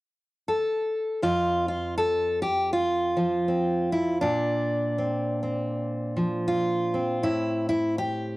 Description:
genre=folk, solo fingerstyle acoustic guitar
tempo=80 BPM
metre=4/4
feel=swing 60% on 8ths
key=F major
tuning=A4 = 439 Hz
part: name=fingerpicked steel-string acoustic guitar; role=solo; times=0.5-8.4 s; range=F2 to A4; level=-24 LUFS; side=equal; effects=cassette tape
room=light reverb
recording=home recording on cassette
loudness=-24 LUFS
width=side -19 dB against mid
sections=0.0-1.2 A section; 1.2-8.4 B section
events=none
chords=0.0 N.C.; 1.2 F5; 4.2 Bbadd9; 7.2 A5

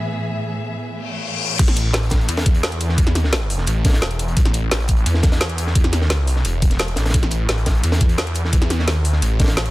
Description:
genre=dark technical drum and bass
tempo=173 BPM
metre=4/4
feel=straight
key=unclear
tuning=A4 = 443 Hz
part: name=warm symphonic string section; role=sustained chords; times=0.0-1.6 s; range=A2 to E5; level=-25 LUFS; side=equal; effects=sidechain pumping
part: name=reverse cymbal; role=sound effects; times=1.0-1.6 s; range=none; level=-25 LUFS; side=left 6 dB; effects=none
part: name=snarling distorted saw bass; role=bass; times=1.6-9.7 s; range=E1 to E2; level=-19 LUFS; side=equal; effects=none
part: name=crunchy breakbeat drum kit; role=drums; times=1.6-9.7 s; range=hi-hat, snare drum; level=-28 LUFS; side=equal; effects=high-pass filter on hats, high-pass filter on snare, high-pass filter on room
part: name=drum and bass drum kit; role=drums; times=1.6-9.7 s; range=crash cymbal, hi-hat, snare drum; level=-23 LUFS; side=equal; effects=low-pass filter on hats, low-pass filter on cymbals, low-pass filter on snare, low-pass filter on room
part: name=electronic kick drum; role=drums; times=1.6-9.5 s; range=none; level=-16 LUFS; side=equal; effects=none
room=studio reverb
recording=dense, heavily limited modern master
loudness=-16 LUFS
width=side -18 dB against mid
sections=0.0-1.6 A section; 1.6-9.7 B section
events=reverse cymbal 1.0-1.6; drop 1.6-9.7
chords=0.0 E/A; 1.6 A5

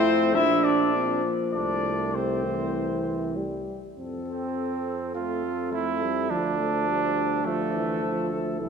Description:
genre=classical, brass quintet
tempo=97-106 BPM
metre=4/4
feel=rubato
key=F major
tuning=A4 = 440 Hz
part: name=mellow trumpet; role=melody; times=0.0-8.7 s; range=A4 to E5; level=-30 LUFS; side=left 7 dB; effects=none
part: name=warm trumpet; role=second line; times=0.0-8.3 s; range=A3 to F4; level=-29 LUFS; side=right 4 dB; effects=none
part: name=mellow French horn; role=accompaniment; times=0.0-8.7 s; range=C3 to C4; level=-31 LUFS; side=left 3 dB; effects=none
part: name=warm euphonium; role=accompaniment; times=0.0-8.7 s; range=E3 to E4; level=-30 LUFS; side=right 3 dB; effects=none
part: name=clear bass trombone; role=bass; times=0.0-8.7 s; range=Bb1 to F2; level=-32 LUFS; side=right 2 dB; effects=none
room=wet concert hall reverb, RT60 2.4 s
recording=minimal, uncompressed stereo recording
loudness=-24 LUFS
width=side -6 dB against mid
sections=0.0-4.0 A section; 4.0-8.7 B section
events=none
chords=0.4 Bb; 1.5 F/C; 2.8 C; 4.0 F; 6.3 Dm

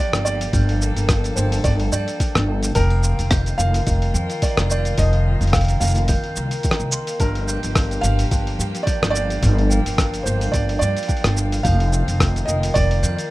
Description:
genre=folktronica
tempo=108 BPM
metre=4/4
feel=swing 56% on 16ths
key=G minor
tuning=A4 = 440 Hz
part: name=felt-muted upright piano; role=melody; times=0.0-13.3 s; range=Bb4 to F5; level=-26 LUFS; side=right 2 dB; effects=ping-pong delay
part: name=glockenspiel with brass mallets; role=second line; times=0.0-13.2 s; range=G5 to G6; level=-34 LUFS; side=right 3 dB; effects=ping-pong delay
part: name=warm string quartet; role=sustained chords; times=0.0-13.3 s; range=Eb3 to A4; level=-31 LUFS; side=left 1 dB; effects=none
part: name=hammered dulcimer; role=arpeggios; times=0.0-13.3 s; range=G2 to Bb4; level=-32 LUFS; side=left 2 dB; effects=none
part: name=upright bass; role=bass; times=0.1-13.2 s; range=F1 to G2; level=-19 LUFS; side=equal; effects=none
part: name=lo-fi sampler-style drum kit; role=drums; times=0.1-13.3 s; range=hi-hat, rim click, shaker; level=-25 LUFS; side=equal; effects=none
part: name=electronic kick drum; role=drums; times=0.5-12.9 s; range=none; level=-21 LUFS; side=equal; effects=overdrive
room=small room ambience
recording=rough home demo mix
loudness=-17 LUFS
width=side -18 dB against mid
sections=0.0-13.3 A section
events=none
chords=0.0 Gm7; 2.8 F7sus4; 7.2 Gm7; 11.6 F7sus4

